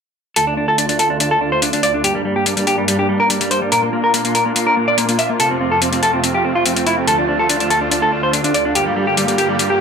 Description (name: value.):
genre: heavy wobble dubstep.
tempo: 143 BPM.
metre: 4/4.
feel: half-time.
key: D minor.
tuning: A4 = 440 Hz.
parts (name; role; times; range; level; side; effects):
semi-hollow electric guitar; melody; 0.4-9.8 s; G3 to E5; -16 LUFS; equal; tape echo.
supersaw chords; sustained chords; 0.4-9.8 s; D2 to G4; -21 LUFS; right 1 dB; low-pass filter.
electronic hi-hat; drums; 0.4-9.7 s; none; -19 LUFS; left 3 dB; none.
deep dark ambient pad; texture; 1.4-9.8 s; D4 to D6; -26 LUFS; equal; chorus, built-in reverb.
room: moderate digital room reverb, RT60 1.0 s, digital ambience.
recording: none.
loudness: -14 LUFS.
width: side -6 dB against mid.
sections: 0.4-9.8 A section.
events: fade-in on ambient pad 0.4-9.8; filter sweep on supersaw synth 0.4-9.8.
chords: 0.4 Dm; 2.0 Gm; 3.7 Bb; 5.4 F; 7.1 Dm; 8.8 Gm.